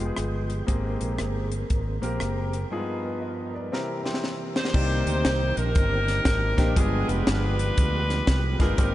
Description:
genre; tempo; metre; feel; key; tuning
uptempo gospel; 118 BPM; 4/4; swing 64% on 8ths; C minor; A4 = 442 Hz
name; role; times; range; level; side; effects
clean lap steel guitar; melody; 0.0-0.5 s; Ab4; -44 LUFS; right 3 dB; none
clear grand piano; accompaniment; 0.0-8.9 s; G2 to Eb5; -31 LUFS; left 2 dB; none
mellow tonewheel organ; sustained chords; 0.0-8.9 s; G2 to G5; -34 LUFS; right 2 dB; slow rotary speaker, chorus vibrato
fingered electric bass; bass; 0.0-8.9 s; F1 to D2; -27 LUFS; equal; none
tight funk drum kit; drums; 0.2-8.9 s; crash cymbal, hi-hat, kick drum, rim click, snare drum; -26 LUFS; equal; none
warm saxophone section; melody; 4.6-8.9 s; B3 to C5; -28 LUFS; equal; analog delay
room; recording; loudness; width
light reverb, studio ambience; nothing above 10.6 kHz; -23 LUFS; side -14 dB against mid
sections
0.0-4.7 A section; 4.7-8.9 B section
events
drum fill 3.7-4.7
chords
0.0 G7b9; 0.7 Abmaj9; 2.7 G7b9b13; 3.7 C7; 4.7 Cm9; 6.8 G7b9

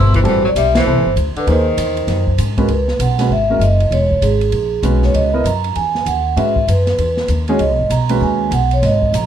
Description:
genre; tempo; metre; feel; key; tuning
modal jazz; 196 BPM; 4/4; swing 63% on 8ths; C# dorian; A4 = 441 Hz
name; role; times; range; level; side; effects
vibraphone with soft mallets; melody; 0.0-9.3 s; G#4 to C6; -18 LUFS; right 2 dB; none
clear tenor saxophone; second line; 0.0-2.4 s; D3 to E4; -21 LUFS; left 3 dB; none
warm baby grand piano; accompaniment; 0.0-8.5 s; B2 to D#5; -19 LUFS; right 1 dB; none
upright bass; bass; 0.0-9.3 s; E1 to G#2; -16 LUFS; equal; none
open jazz drum kit; drums; 0.1-9.2 s; hi-hat, kick drum, ride cymbal, snare drum; -25 LUFS; right 1 dB; none
room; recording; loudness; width
light reverb; close, detailed microphones; -13 LUFS; side -9 dB against mid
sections
0.0-2.7 A section; 2.7-9.3 B section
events
band accent 0.7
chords
0.0 Am11; 1.5 G#7; 2.7 C#m9; 7.6 G#m

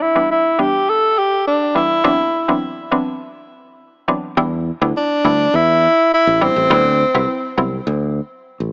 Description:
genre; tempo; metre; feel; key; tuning
afrobeats; 103 BPM; 4/4; straight; E minor; A4 = 440 Hz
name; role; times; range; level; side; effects
breathy tenor saxophone; melody; 0.0-7.6 s; C4 to A4; -17 LUFS; equal; low-pass filter, digital delay
mallet-like synth pluck; accompaniment; 0.2-7.8 s; E3 to B4; -22 LUFS; equal; chorus, low-pass filter
fingered electric bass; bass; 4.4-8.7 s; A1 to E2; -22 LUFS; equal; none
room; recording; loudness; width
light reverb, small room ambience; small speaker sound; -16 LUFS; mono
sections
0.0-4.4 A section; 4.4-8.7 B section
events
none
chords
0.0 Em7; 2.0 D13; 4.4 Em7; 6.7 D13

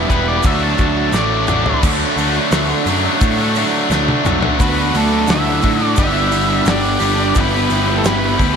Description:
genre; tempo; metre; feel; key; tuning
classic rock; 87 BPM; 4/4; straight; unclear; A4 = 440 Hz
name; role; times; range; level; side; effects
distorted electric guitar; riff; 0.0-8.6 s; D3 to G4; -19 LUFS; left 12 dB; overdrive, slapback echo
tight distorted guitar; riff; 0.0-8.6 s; D3 to G4; -20 LUFS; right 10 dB; distortion, slapback echo
fuzz picked electric bass; bass; 0.0-8.6 s; E1 to A2; -20 LUFS; equal; overdrive
octave-fuzz lead guitar; melody; 0.1-8.6 s; A4 to A5; -21 LUFS; equal; distortion, slapback echo
damped 70s drum kit; drums; 0.1-8.6 s; crash cymbal, hi-hat, kick drum, snare drum, toms; -20 LUFS; equal; none
tube shaker; percussion; 0.1-8.6 s; none; -34 LUFS; right 18 dB; none
bluesy overdriven lead guitar; second line; 4.6-8.6 s; A3 to E4; -24 LUFS; right 4 dB; distortion, slapback echo
room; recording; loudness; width
moderate lush hall reverb, RT60 2.9 s; big arena sound; -13 LUFS; side -6 dB against mid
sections
0.0-1.8 A section; 1.8-4.6 B section; 4.6-8.6 C section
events
lead electric guitar solo 0.0-1.8; drum fill 1.1-1.8, 3.9-4.6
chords
0.4 D; 4.6 Dadd9; 6.0 G; 7.4 Em/G

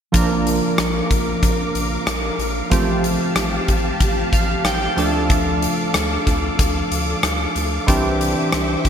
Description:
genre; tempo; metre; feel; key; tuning
1980s-style pop; 93 BPM; 4/4; straight; unclear; A4 = 437 Hz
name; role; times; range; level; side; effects
warm analog keys; accompaniment; 0.1-8.9 s; E3 to A5; -21 LUFS; right 1 dB; chorus
string machine, violas; sustained chords; 0.1-8.9 s; G4 to D6; -25 LUFS; equal; ensemble chorus
round analog bass; bass; 0.1-8.9 s; A1 to D2; -26 LUFS; equal; none
huge arena drum kit; drums; 0.1-8.9 s; hi-hat, kick drum, rim click; -20 LUFS; left 1 dB; gated reverb
room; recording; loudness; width
moderate lush hall reverb, RT60 2.0 s; bright 1980s-style digital production; -17 LUFS; side -8 dB against mid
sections
0.1-8.9 A section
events
synth keys fill 4.0-5.3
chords
0.1 Bb; 2.7 Fadd9/A; 5.0 Dm; 7.9 Cadd9

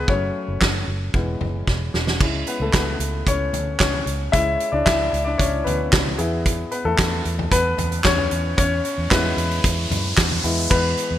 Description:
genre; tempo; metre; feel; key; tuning
piano-driven pop; 113 BPM; 4/4; straight; unclear; A4 = 445 Hz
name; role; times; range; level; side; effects
warm grand piano; accompaniment; 0.0-11.2 s; E3 to E5; -23 LUFS; left 3 dB; none
vintage muted fingered electric bass; bass; 0.0-11.2 s; E1 to F#2; -25 LUFS; equal; none
loose indie drum kit; drums; 0.1-11.1 s; crash cymbal, handclaps, hi-hat, kick drum, snare drum, toms; -21 LUFS; right 1 dB; gated reverb
riser; sound effects; 8.4-10.7 s; none; -29 LUFS; equal; none
room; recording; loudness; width
light reverb, small room ambience; bright 1980s-style digital production; -18 LUFS; side -12 dB against mid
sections
0.0-2.2 A section; 2.2-10.7 B section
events
grand piano solo 0.0-2.2, 2.2-10.7; drum fill 1.7-2.2; riser 8.4-10.7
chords
0.1 F#m; 1.1 E; 2.2 C#m; 6.2 E

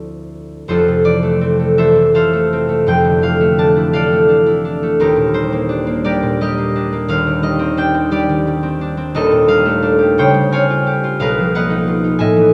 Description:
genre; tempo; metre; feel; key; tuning
classical, solo harp piece; 49-61 BPM (dotted quarters); 6/8; rubato; F major; A4 = 441 Hz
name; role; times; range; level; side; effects
concert harp; solo; 0.0-12.5 s; Eb1 to A5; -15 LUFS; equal; none
room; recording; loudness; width
wet cathedral reverb, RT60 4.4 s; none; -15 LUFS; mono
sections
0.7-12.5 A section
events
none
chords
0.0 Dm9; 0.7 Fmaj7; 2.9 Dmadd9/F; 5.0 Ebmaj7; 7.1 Cmadd9/Eb; 9.1 Ebmaj7#11; 10.2 C#maj7#11; 11.2 Bmaj7#11

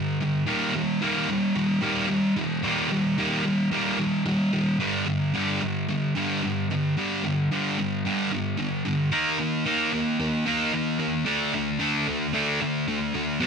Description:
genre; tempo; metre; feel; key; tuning
rock; 111 BPM; 4/4; straight; unclear; A4 = 439 Hz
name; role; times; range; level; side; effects
thick fuzz guitar; solo; 0.0-13.5 s; G2 to Eb4; -23 LUFS; equal; distortion
room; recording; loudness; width
wet booth ambience, RT60 0.2 s; none; -23 LUFS; side -6 dB against mid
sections
0.0-13.4 A section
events
none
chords
0.5 Eb; 4.8 G5; 9.1 Eb5; 11.3 D5

